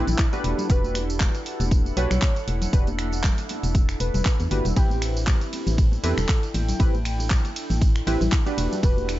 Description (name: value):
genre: deep house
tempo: 118 BPM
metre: 4/4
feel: swing 55% on 16ths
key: A minor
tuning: A4 = 440 Hz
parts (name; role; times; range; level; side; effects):
- warm velvety synth lead; melody; 0.0-9.1 s; E4 to C#5; -32 LUFS; equal; chorus, analog delay
- warm analog keys; stabs; 0.0-9.2 s; C4 to B4; -31 LUFS; right 1 dB; chorus, sidechain pumping, tape echo
- organ-like FM bass; bass; 0.0-9.2 s; E1 to E2; -25 LUFS; equal; sidechain pumping
- warbly tape-like pad; texture; 0.0-9.2 s; D4 to G5; -34 LUFS; equal; chorus, built-in reverb, sidechain pumping
- house drum kit; drums; 0.1-9.2 s; finger snaps, handclaps, hi-hat, ride cymbal, tambourine; -31 LUFS; right 1 dB; none
- congas; percussion; 0.1-9.2 s; none; -34 LUFS; left 3 dB; none
- electronic kick drum; drums; 0.2-8.9 s; none; -20 LUFS; equal; none
room: little or no reverb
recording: nothing above 7.7 kHz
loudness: -20 LUFS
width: side -15 dB against mid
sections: 0.0-9.2 A section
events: none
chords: 0.4 Em9; 4.8 Am9; 8.6 Em9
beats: 0.19 | 0.70 1.21 1.71 2.22 | 2.73 3.24 3.75 4.26 | 4.76 5.27 5.78 6.29 | 6.80 7.31 7.82 8.32 | 8.83